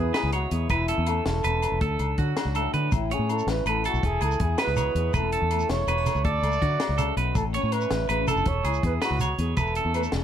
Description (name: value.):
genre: highlife guitar band.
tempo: 108 BPM (dotted quarters).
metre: 12/8.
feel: straight.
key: A major.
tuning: A4 = 441 Hz.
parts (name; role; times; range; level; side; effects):
breathy trumpet; melody; 0.0-10.2 s; E4 to D5; -29 LUFS; right 3 dB; none.
fingerpicked swing-style acoustic guitar; accompaniment; 0.0-10.2 s; A2 to A4; -33 LUFS; left 7 dB; none.
clean electric guitar; arpeggios; 0.0-10.1 s; F#4 to C#5; -30 LUFS; right 6 dB; tape echo.
fingered electric bass; bass; 0.0-10.2 s; E1 to D3; -27 LUFS; equal; none.
compact cocktail drum kit; drums; 0.1-10.2 s; hi-hat, kick drum, snare drum; -30 LUFS; left 1 dB; none.
agogo bells; percussion; 0.1-10.1 s; none; -36 LUFS; left 11 dB; none.
shekere; percussion; 2.9-10.1 s; none; -31 LUFS; right 4 dB; none.
room: little or no reverb.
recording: none.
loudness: -22 LUFS.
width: side -9 dB against mid.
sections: 0.0-10.2 A section.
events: none.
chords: 0.0 E; 0.7 A/E; 1.8 D; 2.9 A; 4.0 E; 5.1 A/E; 6.2 D; 7.4 A; 8.5 E; 9.6 A/E.